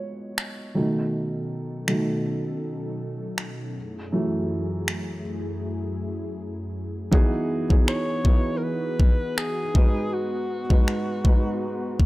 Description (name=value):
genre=contemporary R&B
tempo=80 BPM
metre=4/4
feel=swing 54% on 16ths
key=unclear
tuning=A4 = 440 Hz
part: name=felt-muted upright piano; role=accompaniment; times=0.0-12.1 s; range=F#2 to D#5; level=-27 LUFS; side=right 1 dB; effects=low-pass filter
part: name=trap drum kit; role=drums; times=0.4-12.1 s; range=finger snaps, kick drum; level=-20 LUFS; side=equal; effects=none
part: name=warm analog pad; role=sustained chords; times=1.1-12.1 s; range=F#2 to A4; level=-33 LUFS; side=left 1 dB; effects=chorus, low-pass filter
part: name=warm alto saxophone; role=melody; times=7.9-12.1 s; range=F#4 to C#5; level=-30 LUFS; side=left 1 dB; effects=none
room=small room ambience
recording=dry, gritty hardware recording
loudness=-23 LUFS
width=side -19 dB against mid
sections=0.0-7.1 A section; 7.1-12.1 B section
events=felt piano solo 0.0-7.1; filter sweep 0.0-7.1; break 5.6-7.1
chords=0.0 G#m7; 0.8 B7; 3.8 F#m7; 7.1 Emaj7; 9.8 G#m7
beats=0.38 | 1.12 1.88 2.62 3.38 | 4.12 4.88 5.62 6.38 | 7.12 7.88 8.62 9.38 | 10.12 10.88 11.62